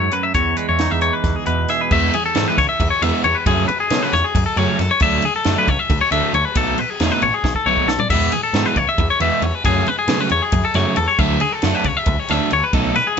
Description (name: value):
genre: math rock and midwest emo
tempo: 272 BPM (eighths)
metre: 7/8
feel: straight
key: E mixolydian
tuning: A4 = 441 Hz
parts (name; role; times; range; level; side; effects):
- twangy electric guitar; accompaniment; 0.0-3.5 s; E2 to G#4; -25 LUFS; right 9 dB; spring reverb
- twangy electric guitar; arpeggios; 0.0-13.2 s; G#4 to E5; -18 LUFS; left 4 dB; none
- growling picked electric bass; bass; 0.0-12.9 s; A1 to B2; -22 LUFS; equal; overdrive
- compact cocktail drum kit; drums; 0.1-13.2 s; crash cymbal, hi-hat, kick drum, ride cymbal, snare drum, splash cymbal, toms; -22 LUFS; equal; none
- crunchy overdriven guitar; riff; 1.9-13.0 s; B2 to E4; -22 LUFS; right 3 dB; none
room: light reverb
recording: band playing live in one room, nothing above 7.8 kHz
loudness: -15 LUFS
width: side -7 dB against mid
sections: 0.0-1.9 A section; 1.9-13.2 B section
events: drum fill 7.4-8.1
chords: 0.4 Emaj7; 1.9 E6; 3.5 F#madd9; 5.0 Dmaj9; 6.6 B7(no3); 8.1 E6; 9.7 F#madd9; 11.2 Dmaj9